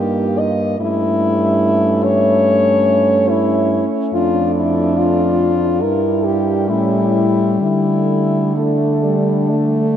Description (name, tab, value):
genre	classical, lyrical piece for horn quartet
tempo	63-74 BPM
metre	4/4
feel	rubato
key	D minor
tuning	A4 = 441 Hz
part	warm French horn	melody	0.0-10.0 s	D4 to Eb5	-17 LUFS	left 3 dB	none
part	mellow French horn	second line	0.0-10.0 s	A3 to E4	-22 LUFS	right 4 dB	none
part	mellow French horn	accompaniment	0.0-10.0 s	G3 to Bb3	-19 LUFS	left 2 dB	none
part	mellow French horn	bass	0.0-10.0 s	F2 to D3	-20 LUFS	right 2 dB	none
room	wet cathedral reverb, RT60 6.6 s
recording	in a vast, echoing space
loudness	-13 LUFS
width	side -9 dB against mid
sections	0.0-10.0 A section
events	none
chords	0.0 Eb/G; 0.8 A7/G; 4.1 Dm/F; 5.8 Edim/G; 6.7 A7; 7.6 D5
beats	| 0.80 1.62 2.46 3.30 | 4.15 4.98 5.83 6.70 | 7.61 8.57 9.52